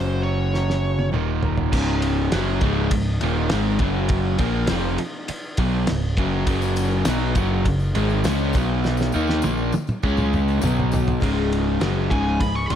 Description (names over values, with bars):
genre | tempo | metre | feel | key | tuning
classic rock | 101 BPM | 4/4 | straight | Db mixolydian | A4 = 440 Hz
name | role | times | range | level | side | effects
biting lead guitar | melody | 0.0-1.1, 12.1-12.8 s | C5 to Db6 | -28 LUFS | right 1 dB | overdrive
picked steel-string acoustic guitar | accompaniment | 0.0-1.7, 11.2-12.8 s | Db3 to Db5 | -33 LUFS | left 5 dB | none
overdriven electric guitar | riff | 0.0-12.8 s | Db2 to Eb4 | -25 LUFS | right 9 dB | none
overdriven semi-hollow guitar | riff | 0.0-12.8 s | Db2 to Eb4 | -25 LUFS | left 9 dB | none
modern bright picked electric bass | bass | 0.0-12.8 s | Db1 to Eb2 | -24 LUFS | equal | none
cloth-damped thuddy drum kit | drums | 0.5-12.8 s | crash cymbal, kick drum, ride cymbal, snare drum, toms | -26 LUFS | equal | none
tambourine | percussion | 6.5-11.1 s | none | -42 LUFS | left 11 dB | none
room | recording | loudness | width
light reverb, studio reverb | none | -19 LUFS | side -9 dB against mid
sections
0.0-1.7 A section; 1.7-11.2 B section; 11.2-12.8 C section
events
drum fill 0.5-1.7, 8.8-11.2; lead electric guitar solo 11.2-12.8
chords
0.0 Gb5; 1.1 Eb5; 1.7 Db5; 3.8 Gb5; 4.4 Db; 6.5 Gb5; 8.5 Cb5; 9.1 Ebsus2; 10.0 Db5; 10.6 Cb5; 11.2 Db